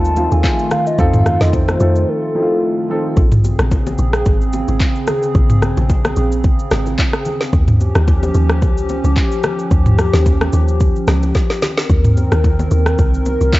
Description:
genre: amapiano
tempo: 110 BPM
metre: 4/4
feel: swing 55% on 16ths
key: Bb dorian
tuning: A4 = 440 Hz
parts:
  - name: hollow clarinet-like synth lead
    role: melody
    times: 0.0-2.9 s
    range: A4 to A5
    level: -20 LUFS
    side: left 1 dB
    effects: chorus, cassette tape, analog delay
  - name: warm baby grand piano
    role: accompaniment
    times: 0.0-3.2 s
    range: F3 to A4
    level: -21 LUFS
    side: right 1 dB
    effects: cassette tape
  - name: hollow soft pad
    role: sustained chords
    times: 0.0-13.6 s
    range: Db3 to Bb4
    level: -20 LUFS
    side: equal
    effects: chorus, sidechain pumping, cassette tape
  - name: deep log drum bass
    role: bass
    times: 0.0-13.5 s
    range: Ab1 to F2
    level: -16 LUFS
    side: equal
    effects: none
  - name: afro-pop drum kit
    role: drums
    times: 0.0-13.6 s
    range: handclaps, kick drum, rim click, shaker, snare drum, toms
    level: -15 LUFS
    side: equal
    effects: cassette tape
  - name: bongos and congas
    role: percussion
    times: 0.2-13.6 s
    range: none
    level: -28 LUFS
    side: left 3 dB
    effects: none
room: digital ambience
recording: home recording on cassette, nothing above 7.8 kHz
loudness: -12 LUFS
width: side -18 dB against mid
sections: 0.0-3.2 A section; 3.2-13.6 B section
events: break 2.1-3.2; drop 3.2-13.6; drum fill 11.3-11.9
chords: 0.0 F7; 3.2 Bbm9; 7.5 Eb9; 11.6 Cm7

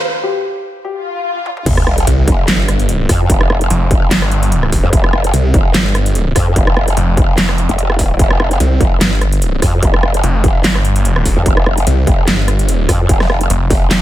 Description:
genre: heavy wobble dubstep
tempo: 147 BPM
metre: 4/4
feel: swing 54% on 16ths, half-time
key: unclear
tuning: A4 = 440 Hz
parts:
  - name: dark baby grand piano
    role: melody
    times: 0.0-1.6 s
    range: G4 to Bb4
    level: -22 LUFS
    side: left 5 dB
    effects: tape echo
  - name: riser, swell and sub drop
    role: sound effects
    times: 0.0-3.3 s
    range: none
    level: -20 LUFS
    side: equal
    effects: none
  - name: dubstep drum kit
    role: drums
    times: 1.5-14.0 s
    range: crash cymbal, handclaps, hi-hat, rim click, snare drum, toms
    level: -17 LUFS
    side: right 1 dB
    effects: high-pass filter on snare, high-pass filter on hats, high-pass filter on toms, high-pass filter on cymbals
  - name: growl bass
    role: bass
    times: 1.7-13.9 s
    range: F1 to F2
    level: -14 LUFS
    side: equal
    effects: chorus, overdrive
  - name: electronic kick drum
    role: drums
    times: 1.7-13.8 s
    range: none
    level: -14 LUFS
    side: equal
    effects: distortion
  - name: snarling distorted saw bass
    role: bass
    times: 2.1-14.0 s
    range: Eb1 to C2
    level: -14 LUFS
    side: equal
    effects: distortion, overdrive
room: little or no reverb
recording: high-pass filter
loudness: -11 LUFS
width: side -14 dB against mid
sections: 0.0-1.7 A section; 1.7-14.0 B section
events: build-up 0.0-1.7; break 0.0-1.7; swell 1.0-1.7; drum fill 1.5; drop 1.7-14.0; impact 1.7-3.3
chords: 0.0 N.C.; 1.7 Fsus2

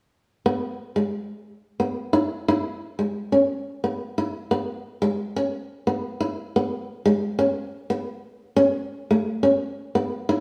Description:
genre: highlife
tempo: 118 BPM (dotted quarters)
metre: 12/8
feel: straight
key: E major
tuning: A4 = 440 Hz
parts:
  - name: flamenco guitar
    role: solo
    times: 0.5-10.4 s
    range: G#3 to E4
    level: -24 LUFS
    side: equal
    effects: none
room: wet stone room reverb, RT60 1.2 s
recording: band playing live in one room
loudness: -25 LUFS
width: mono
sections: 0.5-4.5 A section; 4.5-10.4 B section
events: none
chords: none

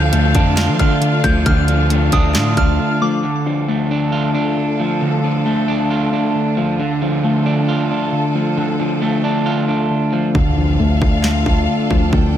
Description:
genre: hip hop, trap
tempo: 135 BPM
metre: 4/4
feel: half-time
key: D minor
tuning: A4 = 440 Hz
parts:
  - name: soft synth bell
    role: second line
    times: 0.0-3.2 s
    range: D6 to G6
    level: -23 LUFS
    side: left 2 dB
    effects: chorus, ping-pong delay
  - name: electric guitar at the edge of break-up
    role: accompaniment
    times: 0.0-12.4 s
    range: D3 to F4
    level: -20 LUFS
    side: right 6 dB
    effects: low-pass filter
  - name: warm studio string section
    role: sustained chords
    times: 0.0-12.4 s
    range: D2 to G5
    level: -24 LUFS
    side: left 1 dB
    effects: none
  - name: muted felt-like synth keys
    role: arpeggios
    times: 0.0-12.4 s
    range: D3 to D4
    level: -19 LUFS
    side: left 4 dB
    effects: chorus, low-pass filter, ping-pong delay
  - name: long sustained 808-style bass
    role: bass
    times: 0.0-2.8, 10.3-12.4 s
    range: D2 to F3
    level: -18 LUFS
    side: equal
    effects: none
  - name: trap drum kit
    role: drums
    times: 0.1-2.7, 10.3-12.2 s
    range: handclaps, hi-hat, kick drum, snare drum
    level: -17 LUFS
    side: equal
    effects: none
  - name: impact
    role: sound effects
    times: 10.4-12.1 s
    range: none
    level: -28 LUFS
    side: equal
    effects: none
room: light reverb, digital ambience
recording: none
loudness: -14 LUFS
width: side -10 dB against mid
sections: 0.0-3.2 A section; 3.2-10.3 B section; 10.3-12.4 C section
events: break 2.8-3.2; hi-hats muted 10.3-12.4; impact 10.3-12.1; filter sweep 10.3-12.4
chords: 0.0 Dm

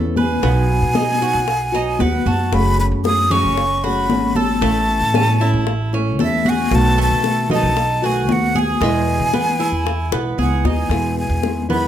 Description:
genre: latin, Cuban son and guajira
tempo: 114 BPM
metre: 4/4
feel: straight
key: E major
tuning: A4 = 440 Hz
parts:
  - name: nylon-string guitar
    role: accompaniment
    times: 0.0-11.9 s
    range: B2 to G#4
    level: -23 LUFS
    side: left 1 dB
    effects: none
  - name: Cuban tres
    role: arpeggios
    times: 0.0-11.9 s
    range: G#3 to B4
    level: -25 LUFS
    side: right 7 dB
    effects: none
  - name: upright bass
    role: bass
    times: 0.0-11.9 s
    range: F#1 to E3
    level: -20 LUFS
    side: right 1 dB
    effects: none
  - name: breathy jazz flute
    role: melody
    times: 0.2-11.9 s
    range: E5 to D#6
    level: -20 LUFS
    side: left 1 dB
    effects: none
  - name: congas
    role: percussion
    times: 0.2-11.9 s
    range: none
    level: -23 LUFS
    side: left 2 dB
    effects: none
  - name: bongos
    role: percussion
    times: 0.4-11.9 s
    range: none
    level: -27 LUFS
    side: left 10 dB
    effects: none
room: light reverb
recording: close, detailed microphones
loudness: -15 LUFS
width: side -10 dB against mid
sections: 0.0-10.9 A section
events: drum fill 10.1-10.9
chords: 0.4 B; 2.5 F#madd9; 4.6 A; 6.7 B7; 8.8 E; 10.9 Emaj7

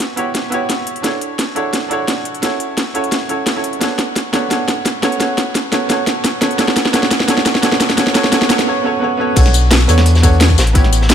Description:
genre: liquid drum and bass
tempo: 173 BPM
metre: 4/4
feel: straight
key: B minor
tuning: A4 = 438 Hz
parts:
  - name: clear baby grand piano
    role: accompaniment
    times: 0.0-11.1 s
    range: B3 to C#5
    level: -18 LUFS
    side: right 2 dB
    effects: low-pass filter, ping-pong delay
  - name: drum and bass drum kit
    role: drums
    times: 0.0-11.1 s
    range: crash cymbal, hi-hat, snare drum, tambourine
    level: -16 LUFS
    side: equal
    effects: none
  - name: sub bass with octave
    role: bass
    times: 9.4-11.1 s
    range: A1 to E2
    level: -11 LUFS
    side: left 1 dB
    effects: tube saturation
  - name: crunchy breakbeat drum kit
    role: drums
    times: 9.4-11.1 s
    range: hi-hat, snare drum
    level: -22 LUFS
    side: equal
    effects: high-pass filter on hats, high-pass filter on snare, high-pass filter on room
  - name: electronic kick drum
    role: drums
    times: 9.4-10.8 s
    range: none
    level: -12 LUFS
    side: left 1 dB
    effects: none
room: light reverb, studio reverb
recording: none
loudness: -12 LUFS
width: side -9 dB against mid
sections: 0.0-9.4 A section; 9.4-11.1 B section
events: build-up 0.0-9.4; drum fill 0.0-8.7; break 8.7-9.4; drop 9.4-11.1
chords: 0.0 Em69/B; 1.0 Dmaj9; 2.4 F#m7; 3.8 Bm9; 5.0 A69; 6.6 Dmaj7; 8.0 F#m; 9.4 Bm9; 10.6 A13

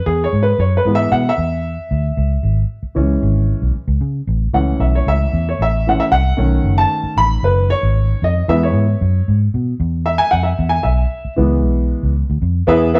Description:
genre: uptempo 1960s-style soul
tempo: 114 BPM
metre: 4/4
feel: straight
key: unclear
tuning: A4 = 439 Hz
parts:
  - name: warm baby grand piano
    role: accompaniment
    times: 0.0-13.0 s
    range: D#3 to B5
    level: -19 LUFS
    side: equal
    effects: none
  - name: vintage muted fingered electric bass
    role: bass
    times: 0.1-13.0 s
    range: F#1 to C#3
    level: -18 LUFS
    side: equal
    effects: none
room: moderate stone room reverb, RT60 1.0 s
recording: band playing live in one room, cassette tape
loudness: -16 LUFS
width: mono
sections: 0.0-12.7 A section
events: grand piano solo 0.0-12.7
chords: 0.1 E; 2.2 C#m; 4.3 A; 6.4 B7; 8.5 E

